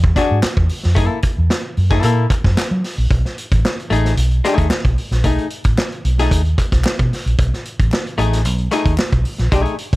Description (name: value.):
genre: funk.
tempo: 112 BPM.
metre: 4/4.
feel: straight.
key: B mixolydian.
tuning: A4 = 440 Hz.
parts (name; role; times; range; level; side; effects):
vintage muted fingered electric bass; bass; 0.0-10.0 s; A1 to F#3; -16 LUFS; equal; none.
vintage drum kit; drums; 0.0-10.0 s; hi-hat, kick drum, snare drum; -19 LUFS; equal; none.
archtop guitar, miked and amplified; accompaniment; 0.2-9.7 s; A3 to A4; -20 LUFS; left 3 dB; plate reverb.
group handclap; percussion; 0.2-9.1 s; none; -29 LUFS; left 3 dB; none.
room: little or no reverb.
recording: none.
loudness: -14 LUFS.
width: side -19 dB against mid.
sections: 0.0-3.1 A section; 3.1-10.0 B section.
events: none.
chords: 0.0 E9; 1.0 F#7#9; 3.1 B6.